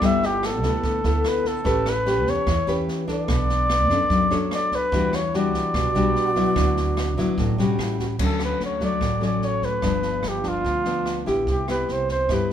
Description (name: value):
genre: bossa nova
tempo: 147 BPM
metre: 4/4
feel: straight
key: D major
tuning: A4 = 442 Hz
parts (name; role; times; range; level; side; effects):
- mellow flugelhorn; melody; 0.0-12.5 s; F4 to E5; -24 LUFS; left 1 dB; none
- nylon-string guitar; accompaniment; 0.0-12.5 s; G2 to C#5; -24 LUFS; left 2 dB; none
- upright bass; bass; 0.0-12.5 s; G1 to G2; -27 LUFS; right 2 dB; none
- open jazz drum kit; drums; 0.0-12.5 s; crash cymbal, kick drum, rim click, snare drum; -30 LUFS; right 1 dB; none
- breathy mellow wooden-headed alto flute; second line; 5.8-8.1 s; D4 to F#4; -28 LUFS; right 7 dB; none
room: moderate large studio reverb, RT60 1.2 s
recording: minimal, uncompressed stereo recording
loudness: -20 LUFS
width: side -9 dB against mid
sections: 0.0-8.2 A section; 8.2-12.5 B section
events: none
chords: 0.0 G69; 1.7 A9; 3.3 Bm9; 4.9 Em9; 6.6 D69; 7.8 A6; 8.2 Dmaj7; 9.8 G7; 11.5 Cmaj7